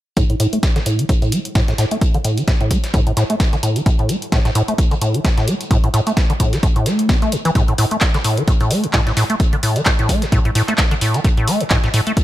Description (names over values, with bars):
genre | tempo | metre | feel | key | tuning
acid house | 130 BPM | 4/4 | swing 56% on 16ths | unclear | A4 = 439 Hz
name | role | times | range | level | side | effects
acid bass, square | riff | 0.2-12.1 s | A2 to C4 | -18 LUFS | equal | tube saturation, analog chorus, dub echo
dusty soul sampler-style drum kit | drums | 0.2-12.2 s | hi-hat, snare drum | -28 LUFS | equal | sidechain pumping on hats, high-pass filter on hats, high-pass filter on snare, high-pass filter on room
electronic kick drum | drums | 0.2-12.2 s | none | -16 LUFS | equal | none
punchy analog drum machine | drums | 0.2-12.2 s | handclaps, hi-hat | -23 LUFS | equal | none
room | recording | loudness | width
digital ambience | none | -14 LUFS | side -14 dB against mid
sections
0.2-12.2 A section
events
filter sweep on acid bass 0.2-12.2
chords
none